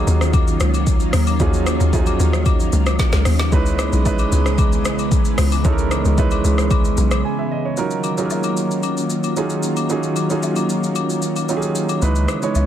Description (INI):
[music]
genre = amapiano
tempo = 113 BPM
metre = 4/4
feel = straight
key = Eb minor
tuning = A4 = 442 Hz
[part]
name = warm grand piano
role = accompaniment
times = 0.0-12.7 s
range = F3 to Ab5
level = -23 LUFS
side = right 5 dB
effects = none
[part]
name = soft string machine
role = sustained chords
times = 0.0-12.7 s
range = Db3 to Eb5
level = -23 LUFS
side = left 1 dB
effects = ensemble chorus, sidechain pumping
[part]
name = hollow log drum bass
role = bass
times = 0.0-7.2 s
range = Cb2 to Eb2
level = -18 LUFS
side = equal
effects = none
[part]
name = afro-pop drum kit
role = drums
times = 0.1-12.7 s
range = hi-hat, kick drum, rim click, shaker, snare drum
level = -20 LUFS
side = equal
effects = overdrive
[part]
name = agogo bells and woodblock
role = percussion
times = 0.3-12.7 s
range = none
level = -30 LUFS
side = left 12 dB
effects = none
[part]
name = saturated sub bass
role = bass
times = 12.0-12.7 s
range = Db2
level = -17 LUFS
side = equal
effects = none
[sound]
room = light reverb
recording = dense, heavily limited modern master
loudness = -16 LUFS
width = side -10 dB against mid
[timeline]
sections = 0.0-7.8 A section; 7.8-12.7 B section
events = drop 0.0-7.8; break 7.2-7.8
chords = 0.0 Ebm9; 3.5 Dbm9; 7.8 Ebm9; 12.0 Dbm9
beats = 0.34 0.87 | 1.40 1.93 2.46 2.99 | 3.52 4.05 4.59 5.12 | 5.65 6.18 6.71 7.24 | 7.77 8.30 8.83 9.36 | 9.89 10.43 10.96 11.49 | 12.02 12.55